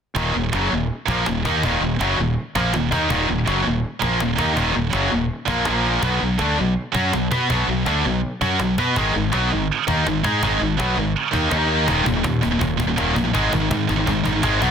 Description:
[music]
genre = heavy metal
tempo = 164 BPM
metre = 4/4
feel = straight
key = Eb minor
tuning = A4 = 442 Hz
[part]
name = heavy high-gain guitar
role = riff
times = 0.2-14.7 s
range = Eb2 to B4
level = -21 LUFS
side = right 10 dB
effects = distortion
[part]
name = tight distorted guitar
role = riff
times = 0.2-14.7 s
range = Eb2 to B4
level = -23 LUFS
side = left 11 dB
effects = distortion
[part]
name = fuzz fingered electric bass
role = bass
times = 0.2-14.7 s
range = Eb1 to B2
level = -25 LUFS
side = equal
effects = overdrive
[part]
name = cajon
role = drums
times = 0.2-14.7 s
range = none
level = -27 LUFS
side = equal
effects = none
[sound]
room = digital ambience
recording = dense, heavily limited modern master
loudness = -18 LUFS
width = side -7 dB against mid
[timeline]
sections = 0.2-11.9 A section; 11.9-14.7 B section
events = none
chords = 0.2 Ebm; 5.7 Bb5; 6.0 B5; 9.0 Ab5; 11.5 Eb5; 13.3 Ab5

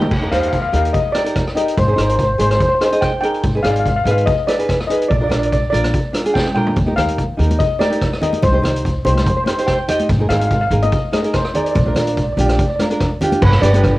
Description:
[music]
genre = calypso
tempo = 144 BPM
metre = 4/4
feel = swing 53% on 16ths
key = Eb major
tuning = A4 = 440 Hz
[part]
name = steel pan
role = melody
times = 0.0-14.0 s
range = B4 to G5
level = -20 LUFS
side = left 1 dB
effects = none
[part]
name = nylon-string guitar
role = accompaniment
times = 0.0-13.9 s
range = D4 to Eb5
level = -20 LUFS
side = right 1 dB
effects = cassette tape
[part]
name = upright bass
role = bass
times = 0.0-14.0 s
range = G1 to Eb2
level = -18 LUFS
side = equal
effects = none
[part]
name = street-band drum kit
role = drums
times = 0.0-13.9 s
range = crash cymbal, hi-hat, kick drum, rim click, snare drum, toms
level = -20 LUFS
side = equal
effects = cassette tape
[part]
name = congas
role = percussion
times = 0.0-0.1, 6.8-13.8 s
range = none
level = -24 LUFS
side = left 1 dB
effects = none
[sound]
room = moderate studio reverb, RT60 0.5 s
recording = home recording on cassette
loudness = -14 LUFS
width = side -18 dB against mid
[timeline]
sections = 0.1-13.4 A section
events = drum fill 6.3-6.8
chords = 0.1 Eb; 1.8 Ab; 3.4 Abm; 5.1 Bb; 6.8 Ebadd9; 8.4 Cm; 10.1 Absus2; 11.8 Bb; 13.4 G

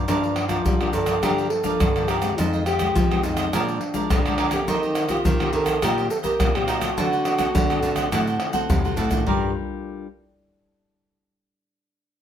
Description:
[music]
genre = samba and choro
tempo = 104 BPM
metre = 4/4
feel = straight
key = G minor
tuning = A4 = 440 Hz
[part]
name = cavaquinho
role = accompaniment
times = 0.0-9.5 s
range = D4 to F#5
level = -30 LUFS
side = right 7 dB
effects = none
[part]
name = nylon-string guitar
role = accompaniment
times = 0.0-10.1 s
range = F2 to Bb4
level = -29 LUFS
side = left 5 dB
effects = none
[part]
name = nylon-string guitar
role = bass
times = 0.0-9.5 s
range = F2 to G3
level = -26 LUFS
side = right 1 dB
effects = none
[part]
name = warm French horn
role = melody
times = 0.1-9.5 s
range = D4 to Bb4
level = -25 LUFS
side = equal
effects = none
[part]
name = egg shaker, surdo, pandeiro and tamborim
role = percussion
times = 0.1-9.4 s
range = none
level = -24 LUFS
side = equal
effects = none
[sound]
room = light reverb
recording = none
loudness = -20 LUFS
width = side -9 dB against mid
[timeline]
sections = 0.1-9.3 A section; 9.3-11.6 B section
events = drum fill 8.4-9.3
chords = 0.1 Gm7; 2.4 Fm7; 3.5 Bb7; 4.7 Eb6; 7.0 D7; 9.3 Gm7

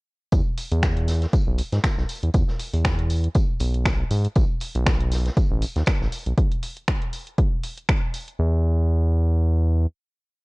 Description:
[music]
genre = deep house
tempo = 119 BPM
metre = 4/4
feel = swing 55% on 16ths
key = E major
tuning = A4 = 437 Hz
[part]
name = round analog bass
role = bass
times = 0.3-9.9 s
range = A1 to G#2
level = -20 LUFS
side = equal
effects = sidechain pumping
[part]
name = deep house drum kit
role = drums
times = 0.3-8.4 s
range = finger snaps, hi-hat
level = -30 LUFS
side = equal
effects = overdrive, vintage 12-bit sampler grit, small room reverb
[part]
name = electronic kick drum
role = drums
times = 0.3-8.0 s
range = none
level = -21 LUFS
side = equal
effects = overdrive, vintage 12-bit sampler grit, small room reverb
[part]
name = vintage drum kit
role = drums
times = 0.3-6.3 s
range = hi-hat, snare drum, tambourine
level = -38 LUFS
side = equal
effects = high-pass filter on hats, vintage 12-bit sampler grit, small room reverb, high-pass filter on snare, high-pass filter on perc, high-pass filter on room
[sound]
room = little or no reverb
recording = cassette tape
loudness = -20 LUFS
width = side -27 dB against mid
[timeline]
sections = 0.3-8.4 groove; 8.4-10.4 final note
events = none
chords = none

